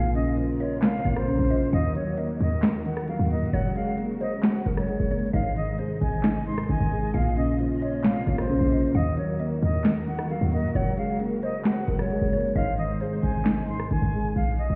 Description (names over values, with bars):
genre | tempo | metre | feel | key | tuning
hip hop, trap | 133 BPM | 4/4 | half-time | unclear | A4 = 445 Hz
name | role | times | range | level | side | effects
jazz flute | melody | 0.0-14.8 s | C5 to C6 | -35 LUFS | equal | low-pass filter, delay
hollow square pluck | second line | 0.0-13.4 s | Bb4 to F5 | -40 LUFS | equal | chorus, delay
dark grand piano | accompaniment | 0.0-14.4 s | Ab2 to Eb5 | -30 LUFS | equal | low-pass filter
dark chamber string section | sustained chords | 0.0-14.3 s | Bb2 to Eb5 | -38 LUFS | equal | none
short 808-style bass | bass | 0.0-14.8 s | Gb1 to Bb2 | -30 LUFS | equal | none
trap drum kit | drums | 0.1-14.7 s | handclaps, hi-hat, rim click, snare drum | -27 LUFS | equal | none
downlifter | sound effects | 14.4-14.8 s | none | -48 LUFS | equal | none
room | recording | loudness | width
light reverb, studio reverb | heard muffled through a wall, stone room reverb, EQ | -25 LUFS | mono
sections
0.0-14.4 A section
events
none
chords
0.0 Bbmadd9; 1.7 Ebm; 3.5 Gbadd9; 5.3 Ab; 7.1 Bbmadd9; 8.9 Ebm; 10.8 Gbadd9; 12.6 Ab